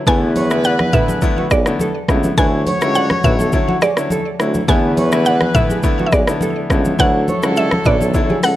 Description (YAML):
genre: afrobeats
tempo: 104 BPM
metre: 4/4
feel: straight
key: unclear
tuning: A4 = 437 Hz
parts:
  - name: mallet-like synth pluck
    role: melody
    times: 0.1-8.6 s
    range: D5 to G#5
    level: -20 LUFS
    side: right 1 dB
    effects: chorus, tape echo
  - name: mellow horn section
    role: second line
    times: 0.1-8.6 s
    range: E3 to C#5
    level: -23 LUFS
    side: left 2 dB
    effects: none
  - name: clear grand piano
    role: accompaniment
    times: 0.1-8.4 s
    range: D3 to E4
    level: -21 LUFS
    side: left 2 dB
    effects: none
  - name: flamenco guitar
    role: riff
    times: 0.1-8.5 s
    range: F#4 to D5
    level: -24 LUFS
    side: right 2 dB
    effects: tape echo
  - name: clear tuba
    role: bass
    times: 0.1-8.5 s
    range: B1 to E2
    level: -19 LUFS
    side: equal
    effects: none
  - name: afro-pop drum kit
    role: drums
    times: 0.1-8.6 s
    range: hi-hat, kick drum, rim click, shaker, toms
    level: -18 LUFS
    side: equal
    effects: none
  - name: congas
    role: percussion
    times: 0.1-8.4 s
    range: none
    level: -24 LUFS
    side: equal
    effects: none
room: small room ambience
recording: dry, gritty hardware recording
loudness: -13 LUFS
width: side -14 dB against mid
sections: 0.1-8.6 A section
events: none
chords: 0.1 Dmaj9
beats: | 0.07 0.65 1.22 1.80 | 2.38 2.95 3.53 4.11 | 4.68 5.26 5.84 6.42 | 6.99 7.57 8.14